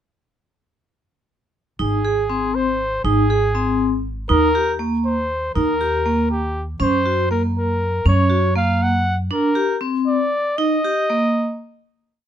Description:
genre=contemporary instrumental, chamber music in an uneven meter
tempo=239 BPM (eighths)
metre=5/8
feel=straight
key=unclear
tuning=A4 = 440 Hz
part: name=clear flugelhorn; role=melody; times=1.8-11.6 s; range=G4 to Gb5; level=-21 LUFS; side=left 1 dB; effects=none
part: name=vibraphone with medium hard mallets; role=arpeggios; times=1.8-11.5 s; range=Bb3 to Ab4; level=-20 LUFS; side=equal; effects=none
part: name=upright bass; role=bass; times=1.8-9.3 s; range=Ab1 to Gb2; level=-22 LUFS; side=equal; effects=none
room=light reverb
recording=close, detailed microphones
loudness=-17 LUFS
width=side -10 dB against mid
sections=1.8-11.9 A section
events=slowing down 9.3-11.9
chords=1.8 Ab; 4.3 Eb; 6.8 Gb; 9.3 Gm; 10.6 Eb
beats=| 1.79 2.04 2.29 2.54 2.79 | 3.04 3.30 3.55 3.80 4.05 | 4.30 4.55 4.80 5.05 5.30 | 5.55 5.80 6.05 6.30 6.55 | 6.80 7.05 7.30 7.56 7.81 | 8.06 8.31 8.56 8.81 9.06 | 9.31 9.56 9.81 10.06 10.32 | 10.57 10.83 11.09 11.35 11.61

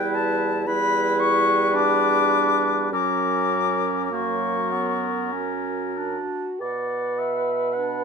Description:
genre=classical, slow romantic movement for wind quintet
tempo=45-59 BPM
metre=3/4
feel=rubato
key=B minor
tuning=A4 = 438 Hz
part: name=concert flute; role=melody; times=0.0-8.0 s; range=F#5 to D6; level=-24 LUFS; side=left 5 dB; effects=none
part: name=warm oboe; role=second line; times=0.0-8.0 s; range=A#4 to F#5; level=-28 LUFS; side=left 2 dB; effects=none
part: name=mellow French horn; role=accompaniment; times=0.0-8.0 s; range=F#3 to B4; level=-28 LUFS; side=right 1 dB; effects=none
part: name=warm clarinet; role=accompaniment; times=0.0-8.0 s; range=A#3 to E4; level=-28 LUFS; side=right 10 dB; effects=none
part: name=mellow bassoon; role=bass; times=0.0-8.0 s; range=E2 to B2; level=-29 LUFS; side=right 2 dB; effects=none
room=light reverb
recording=minimal, uncompressed stereo recording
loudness=-20 LUFS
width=side -5 dB against mid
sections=0.0-6.6 A section; 6.6-8.0 B section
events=none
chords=0.0 Em; 2.9 F#; 6.6 Bm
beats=0.68 1.75 | 2.93 4.13 5.33 | 6.60 7.73

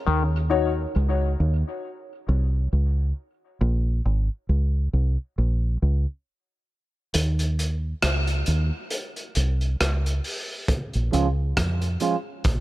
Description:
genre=dub reggae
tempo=68 BPM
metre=4/4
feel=swing 58% on 16ths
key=Bb minor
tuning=A4 = 439 Hz
part: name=deep dub fingered electric bass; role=bass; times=0.1-12.6 s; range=Ab1 to F2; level=-22 LUFS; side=equal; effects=none
part: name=dark upright piano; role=stabs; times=0.5-0.7 s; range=Eb4 to Db5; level=-28 LUFS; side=left 7 dB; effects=high-pass filter, low-pass filter, tape echo
part: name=crunchy breakbeat drum kit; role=drums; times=7.1-12.6 s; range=hi-hat, kick drum, rim click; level=-26 LUFS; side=equal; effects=none
part: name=clean electric guitar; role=accompaniment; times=11.1-12.2 s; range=F3 to F4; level=-26 LUFS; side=right 5 dB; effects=low-pass filter
room=studio reverb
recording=none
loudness=-22 LUFS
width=side -16 dB against mid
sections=0.0-10.7 A section; 10.7-12.6 B section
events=break 0.0-10.7; kick muted 7.1-10.7; filter sweep 10.7-12.6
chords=0.1 Eb7(no3); 3.6 Bbm; 7.1 Cm; 10.7 Bbm7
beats=| 0.07 0.95 1.83 2.72 | 3.60 4.49 5.37 6.26 | 7.14 8.03 8.91 9.80 | 10.68 11.57 12.45

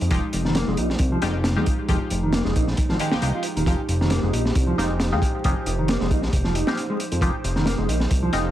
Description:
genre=breakbeat, breaks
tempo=135 BPM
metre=4/4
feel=swing 54% on 16ths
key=unclear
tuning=A4 = 440 Hz
part: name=warbly tape-like pad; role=sustained chords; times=0.0-8.5 s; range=F3 to C5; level=-31 LUFS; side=right 1 dB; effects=chorus, built-in reverb, sidechain pumping
part: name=fat analog bass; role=bass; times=0.0-8.5 s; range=Eb1 to F2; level=-24 LUFS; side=equal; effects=none
part: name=crunchy breakbeat drum kit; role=drums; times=0.0-8.4 s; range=hi-hat, kick drum, snare drum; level=-24 LUFS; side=equal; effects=none
part: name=mellow electric guitar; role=riff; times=0.1-8.4 s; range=Eb3 to F4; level=-27 LUFS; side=right 1 dB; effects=tape echo
part: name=band-passed chord stab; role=stabs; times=0.1-8.5 s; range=Ab3 to G4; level=-29 LUFS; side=left 2 dB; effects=phaser, analog chorus, tape echo
room=light reverb, small room ambience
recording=echo-heavy mix, vinyl crackle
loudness=-20 LUFS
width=side -12 dB against mid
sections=0.0-8.5 A section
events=none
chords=0.0 Fm9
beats=| 0.11 0.56 1.00 1.45 | 1.89 2.34 2.78 3.23 | 3.67 4.11 4.56 5.00 | 5.45 5.89 6.34 6.78 | 7.23 7.67 8.11

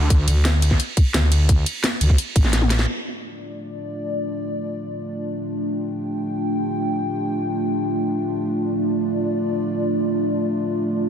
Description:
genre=dark technical drum and bass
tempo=free time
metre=none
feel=none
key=D minor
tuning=A4 = 440 Hz
part: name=drum and bass drum kit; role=drums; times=0.1-2.9 s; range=crash cymbal, hi-hat, ride cymbal, snare drum, toms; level=-23 LUFS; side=equal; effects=low-pass filter on hats, low-pass filter on cymbals, low-pass filter on snare, low-pass filter on toms, low-pass filter on room
part: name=electronic kick drum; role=drums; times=0.1-2.4 s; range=none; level=-16 LUFS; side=equal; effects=none
part: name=growling FM bass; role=bass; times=0.3-2.9 s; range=A1 to D2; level=-18 LUFS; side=equal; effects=tube saturation
part: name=dark analog pad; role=sustained chords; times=3.3-11.1 s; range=A3 to G5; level=-22 LUFS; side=equal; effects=chorus, sidechain pumping
room=light reverb, digital ambience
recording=dense, heavily limited modern master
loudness=-19 LUFS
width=side -8 dB against mid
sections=0.0-2.9 A section; 2.9-11.1 B section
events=drop 0.0-2.9; drum fill 2.5-2.9; band accent 2.8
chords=0.0 D5; 2.9 Dm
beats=free time

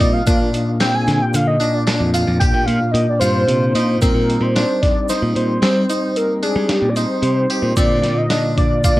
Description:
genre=progressive instrumental, band music in an uneven meter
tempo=112 BPM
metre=7/4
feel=straight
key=unclear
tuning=A4 = 440 Hz
part: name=wide unison lead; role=melody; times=0.0-9.0 s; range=G4 to Ab5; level=-20 LUFS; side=equal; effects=analog delay
part: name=mellow tonewheel organ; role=accompaniment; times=0.0-9.0 s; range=Bb2 to F4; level=-21 LUFS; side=left 1 dB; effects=chorus vibrato, cassette tape
part: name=harpsichord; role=arpeggios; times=0.0-9.0 s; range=C4 to G4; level=-24 LUFS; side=right 1 dB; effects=cassette tape, analog delay
part: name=modern bright picked electric bass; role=bass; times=0.0-9.0 s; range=F2 to G3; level=-19 LUFS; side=equal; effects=none
part: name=dusty soul sampler-style drum kit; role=drums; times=0.0-9.0 s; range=hi-hat, kick drum, snare drum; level=-19 LUFS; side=equal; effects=none
part: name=egg shaker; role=percussion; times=0.3-9.0 s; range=none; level=-34 LUFS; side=right 4 dB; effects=none
room=digital ambience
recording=home recording on cassette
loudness=-14 LUFS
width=side -17 dB against mid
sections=0.0-4.0 A section; 4.0-9.0 B section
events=analog synth lead solo 0.0-4.0; kick and snare drop out 2.9-4.0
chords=0.3 Bb; 4.0 Eb6/Bb; 7.8 Bb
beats=| 0.27 0.81 1.34 1.88 2.41 2.95 3.48 | 4.02 4.55 5.09 5.63 6.16 6.70 7.24 | 7.77 8.31 8.85

